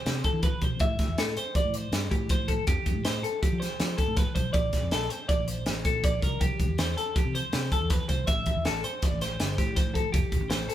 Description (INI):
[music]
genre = math rock and midwest emo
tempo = 161 BPM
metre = 5/4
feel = straight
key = unclear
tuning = A4 = 440 Hz
[part]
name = twelve-string electric guitar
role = arpeggios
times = 0.0-10.7 s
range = G4 to E5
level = -31 LUFS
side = left 1 dB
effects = none
[part]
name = fingered electric bass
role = bass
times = 0.1-10.7 s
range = E1 to F3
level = -32 LUFS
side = equal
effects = none
[part]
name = crisp fusion drum kit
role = drums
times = 0.1-10.7 s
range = hi-hat, kick drum, snare drum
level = -27 LUFS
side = equal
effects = none
[sound]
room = light reverb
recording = band playing live in one room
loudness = -25 LUFS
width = side -12 dB against mid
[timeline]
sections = 0.0-10.7 A section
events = none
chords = 0.0 Cmaj7; 0.8 Am7; 2.7 Fadd9; 4.5 Bbmaj7; 6.4 Cmaj7; 8.3 Am7; 10.1 Fmaj9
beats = 0.06 0.43 | 0.81 1.18 1.55 1.93 2.30 | 2.67 3.05 3.42 3.79 4.17 | 4.54 4.91 5.29 5.66 6.03 | 6.41 6.78 7.15 7.53 7.90 | 8.27 8.64 9.01 9.39 9.76 | 10.13 10.50